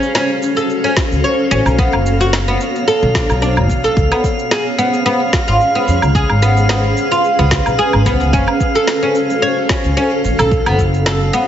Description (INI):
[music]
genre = organic downtempo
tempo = 110 BPM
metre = 4/4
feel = swing 54% on 16ths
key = unclear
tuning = A4 = 440 Hz
[part]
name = granular cloud pad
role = sustained chords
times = 0.0-11.5 s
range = B3 to C#5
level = -20 LUFS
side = left 1 dB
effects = built-in reverb, vintage 12-bit sampler grit, sidechain pumping
[part]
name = oud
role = arpeggios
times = 0.0-11.5 s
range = B3 to C#5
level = -16 LUFS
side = equal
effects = ping-pong delay
[part]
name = electronic cabasa, snare drum and woodblock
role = drums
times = 0.0-11.5 s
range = none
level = -21 LUFS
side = equal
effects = small room ambience
[part]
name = drifting glass-harmonics texture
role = texture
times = 0.0-11.5 s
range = E#5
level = -24 LUFS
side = right 1 dB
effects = chorus, built-in reverb
[part]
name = electronic kick drum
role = drums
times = 1.0-10.9 s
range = none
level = -18 LUFS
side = equal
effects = small room ambience
[part]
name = upright bass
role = bass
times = 1.1-11.3 s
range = F#1 to E#2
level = -16 LUFS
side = equal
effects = sidechain pumping
[sound]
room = moderate echo chamber reverb, RT60 1.6 s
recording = heavily compressed radio sound, multiband compression, nothing above 7.7 kHz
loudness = -12 LUFS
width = side -10 dB against mid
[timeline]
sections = 0.0-11.5 A section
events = none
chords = 0.0 F#m; 1.8 Bm; 4.0 C#7; 8.3 F#m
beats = 0.15 0.70 1.24 | 1.79 2.33 2.88 3.42 | 3.97 4.51 5.06 5.61 | 6.15 6.70 7.24 7.79 | 8.33 8.88 9.42 9.97 | 10.52 11.06